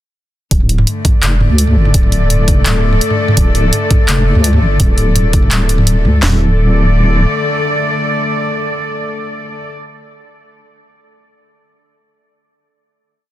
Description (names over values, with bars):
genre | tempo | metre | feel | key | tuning
half-time drum and bass | 168 BPM | 4/4 | half-time | D minor | A4 = 439 Hz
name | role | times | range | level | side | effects
warm studio cello section | sustained chords | 0.5-9.7 s | D3 to D5 | -17 LUFS | left 2 dB | sidechain pumping
deep soft wobble bass | bass | 0.5-7.3 s | D1 to D2 | -12 LUFS | equal | chorus
drum and bass drum kit | drums | 0.5-6.3 s | handclaps, kick drum, snare drum, toms | -12 LUFS | equal | overdrive
drum and bass drum kit | drums | 0.5-6.1 s | handclaps, hi-hat, toms | -16 LUFS | right 1 dB | overdrive
room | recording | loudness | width
little or no reverb | dense, heavily limited modern master | -10 LUFS | side -14 dB against mid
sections
0.5-6.2 drop; 6.2-9.1 final chord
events
drop 0.5-6.2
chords
0.5 D5